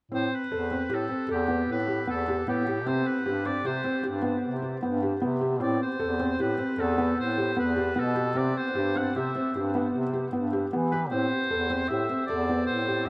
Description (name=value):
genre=contemporary instrumental, chamber music in an uneven meter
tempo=153 BPM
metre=7/4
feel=straight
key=A minor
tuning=A4 = 440 Hz
part: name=warm oboe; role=melody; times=0.1-13.1 s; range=G4 to F#5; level=-34 LUFS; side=equal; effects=none
part: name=felt-muted upright piano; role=arpeggios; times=0.1-13.0 s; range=B3 to A4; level=-31 LUFS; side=equal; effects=none
part: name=warm bass clarinet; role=bass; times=0.1-13.1 s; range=E2 to E3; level=-32 LUFS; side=equal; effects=none
room=wet huge ambient reverb, RT60 8.2 s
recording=in a vast, echoing space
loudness=-28 LUFS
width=mono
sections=0.1-13.1 A section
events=none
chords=0.1 Am9; 2.9 C5; 5.6 Am9; 8.4 Cmaj7; 11.1 Am9